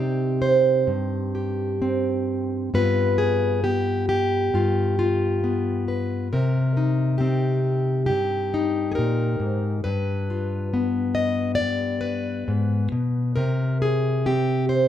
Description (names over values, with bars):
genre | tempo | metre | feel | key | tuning
folk, solo fingerstyle acoustic guitar | 68 BPM | 4/4 | rubato | C minor | A4 = 439 Hz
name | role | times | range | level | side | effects
fingerpicked plugged-in steel-string acoustic guitar | solo | 0.0-14.9 s | G2 to Eb5 | -20 LUFS | left 1 dB | none
room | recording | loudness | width
moderate large studio reverb, RT60 1.2 s | close, detailed microphones | -21 LUFS | side -10 dB against mid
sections
0.0-2.7 A section; 2.7-14.9 B section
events
none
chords
0.0 Cmadd9; 2.7 G7; 6.3 Cm7; 9.8 G7; 13.4 C5